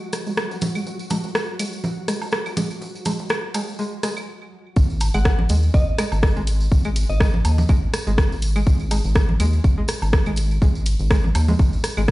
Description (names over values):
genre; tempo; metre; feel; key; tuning
minimal techno; 123 BPM; 4/4; swing 55% on 16ths; unclear; A4 = 440 Hz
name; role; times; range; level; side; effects
flickering grainy texture; texture; 0.0-4.3 s; F#3 to F#4; -34 LUFS; equal; built-in reverb, sidechain pumping
house drum kit; drums; 0.1-12.1 s; hi-hat, rim click; -24 LUFS; equal; none
tambourine; percussion; 0.1-12.1 s; none; -36 LUFS; right 1 dB; none
string-like resonator pluck; riff; 0.3-12.0 s; G#3; -29 LUFS; equal; chorus, sidechain pumping, tape echo
rubbery square bass; bass; 0.3-12.1 s; G#1 to D#2; -21 LUFS; equal; sidechain pumping, high-pass filter
congas, claves and woodblock; percussion; 0.6-12.1 s; none; -29 LUFS; right 2 dB; overdrive, tape echo
electronic kick drum; drums; 4.8-12.1 s; none; -18 LUFS; equal; none
glassy synth bell; melody; 5.1-7.6 s; D#5 to F#5; -32 LUFS; equal; chorus, tremolo, tape echo
room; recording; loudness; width
light reverb; played on a big sound system in a bare room, stone room reverb, nothing above 10.7 kHz; -18 LUFS; side -18 dB against mid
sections
0.0-4.8 A section; 4.8-12.1 B section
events
build-up 0.0-4.8; filter sweep on synth pluck 0.0-4.8; stop 4.3-4.8; drop 4.8-12.1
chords
0.0 G#5